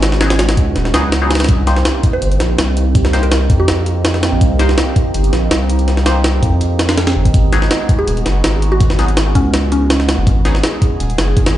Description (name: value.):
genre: drum and bass, jungle.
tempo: 164 BPM.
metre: 4/4.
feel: straight.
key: C minor.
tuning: A4 = 440 Hz.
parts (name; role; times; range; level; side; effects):
warbly tape-like pad; sustained chords; 0.0-11.6 s; Ab3 to Ab4; -21 LUFS; right 2 dB; chorus, built-in reverb, phaser.
saturated sub bass; bass; 0.0-11.6 s; Eb1 to F2; -15 LUFS; equal; none.
jungle sampler-style drum kit; drums; 0.0-11.5 s; hi-hat, kick drum, snare drum; -15 LUFS; equal; none.
band-passed chord stab; stabs; 0.2-10.6 s; Gb3 to C5; -22 LUFS; left 2 dB; phaser, dub echo.
mallet-like synth pluck; melody; 2.1-4.1, 8.0-10.1 s; Db4 to C5; -22 LUFS; equal; analog chorus, dub echo.
room: light reverb, digital ambience.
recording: played on a big sound system in a bare room, large studio reverb, nothing above 10.7 kHz.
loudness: -11 LUFS.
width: side -13 dB against mid.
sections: 0.0-11.6 A section.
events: none.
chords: 0.0 Abm7; 1.5 Cm7; 7.3 Abm7.